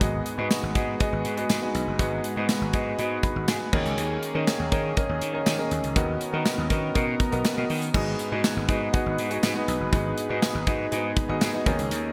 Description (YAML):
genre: 1980s-style pop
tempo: 121 BPM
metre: 4/4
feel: straight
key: G# minor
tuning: A4 = 440 Hz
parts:
  - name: warm concert grand piano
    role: accompaniment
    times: 0.0-12.1 s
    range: G#2 to B5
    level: -30 LUFS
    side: equal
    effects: none
  - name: chorused pulse-width pad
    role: sustained chords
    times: 0.0-12.1 s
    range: D#3 to B4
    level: -36 LUFS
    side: equal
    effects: none
  - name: gritty slap bass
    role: bass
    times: 0.0-12.1 s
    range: F#1 to D#3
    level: -32 LUFS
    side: equal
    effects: overdrive
  - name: modern studio drum kit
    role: drums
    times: 0.0-12.0 s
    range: crash cymbal, hi-hat, kick drum, snare drum, tambourine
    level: -29 LUFS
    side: equal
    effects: gated reverb
  - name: tambourine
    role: percussion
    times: 0.5-11.5 s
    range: none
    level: -45 LUFS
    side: equal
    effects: none
room: moderate lush hall reverb, RT60 2.5 s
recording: bright 1980s-style digital production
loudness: -26 LUFS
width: mono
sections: 0.0-7.9 A section; 7.9-12.1 A section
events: none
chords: 0.0 G#m7; 3.7 D#7sus4; 6.0 Bmaj7/D#; 7.9 G#m7